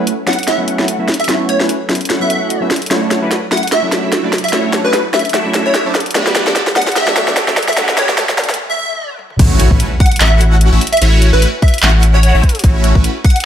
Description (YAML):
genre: future bass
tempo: 148 BPM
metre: 4/4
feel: swing 56% on 16ths, half-time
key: A mixolydian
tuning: A4 = 440 Hz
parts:
  - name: tine electric piano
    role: accompaniment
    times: 0.0-8.5 s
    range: F#3 to E4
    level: -21 LUFS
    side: left 2 dB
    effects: sidechain pumping
  - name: ethereal airy pad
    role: sustained chords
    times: 0.0-8.6 s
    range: F#3 to F#5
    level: -30 LUFS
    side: left 1 dB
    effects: none
  - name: big bright polysynth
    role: riff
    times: 0.0-13.1 s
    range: A3 to F#5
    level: -18 LUFS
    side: right 2 dB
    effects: chorus, phaser, sidechain pumping
  - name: trap drum kit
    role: drums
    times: 0.1-13.5 s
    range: crash cymbal, handclaps, hi-hat, snare drum, toms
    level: -16 LUFS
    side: equal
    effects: overdrive
  - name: plucky unison lead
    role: melody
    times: 0.3-13.4 s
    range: B4 to F#5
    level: -18 LUFS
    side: equal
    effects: ensemble chorus, sidechain pumping
  - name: riser and impact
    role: sound effects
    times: 4.4-11.0 s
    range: none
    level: -24 LUFS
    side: equal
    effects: none
  - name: saturated sub bass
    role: bass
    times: 9.4-13.1 s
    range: A1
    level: -10 LUFS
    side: equal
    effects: sidechain pumping
  - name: electronic kick drum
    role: drums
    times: 9.4-13.3 s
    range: none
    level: -10 LUFS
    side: equal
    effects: overdrive
room: moderate digital room reverb, RT60 1.0 s, digital ambience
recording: high-pass filter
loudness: -11 LUFS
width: side -10 dB against mid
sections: 0.0-9.4 A section; 9.4-13.5 B section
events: build-up 0.0-9.4; drum fill 0.0-8.6, 9.2; filter sweep on analog polysynth 0.0-9.4; break 8.6-9.4; drop 9.4-13.5; impact 9.4-11.0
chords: 0.0 A6; 2.9 Dmaj9; 5.9 Gmaj9; 9.4 A6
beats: 0.07 0.47 0.88 | 1.29 1.69 2.10 2.50 | 2.91 3.31 3.72 4.12 | 4.53 4.93 5.34 5.75 | 6.15 6.56 6.96 7.37 | 7.77 8.18 8.58 8.99 | 9.39 9.80 10.21 10.61 | 11.02 11.42 11.83 12.23 | 12.64 13.04 13.45